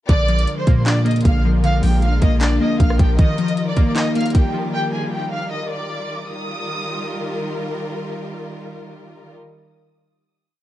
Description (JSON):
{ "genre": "hip hop, trap", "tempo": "155 BPM", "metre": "4/4", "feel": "half-time", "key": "Eb major", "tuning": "A4 = 440 Hz", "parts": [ { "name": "warm studio violin section", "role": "melody", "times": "0.1-7.4 s", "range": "G4 to F6", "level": "-26 LUFS", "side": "equal", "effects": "low-pass filter" }, { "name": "glassy digital keys", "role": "accompaniment", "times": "0.1-5.5 s", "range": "D3 to Eb4", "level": "-21 LUFS", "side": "left 2 dB", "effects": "chorus, low-pass filter" }, { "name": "warm symphonic string section", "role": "sustained chords", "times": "0.1-9.3 s", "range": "D3 to Bb4", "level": "-28 LUFS", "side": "equal", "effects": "none" }, { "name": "warm 808-style bass", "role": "bass", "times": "0.1-3.2 s", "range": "Bb1 to Bb2", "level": "-18 LUFS", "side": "equal", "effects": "none" }, { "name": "trap drum kit", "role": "drums", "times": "0.1-4.4 s", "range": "handclaps, hi-hat, kick drum, rim click", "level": "-17 LUFS", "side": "equal", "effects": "vintage 12-bit sampler grit" } ], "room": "digital ambience", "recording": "dark, warm production", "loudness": "-16 LUFS", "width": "side -14 dB against mid", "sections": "0.1-6.3 hook; 6.3-9.4 final chord", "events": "none", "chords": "0.1 Bb7; 3.2 Ebadd9" }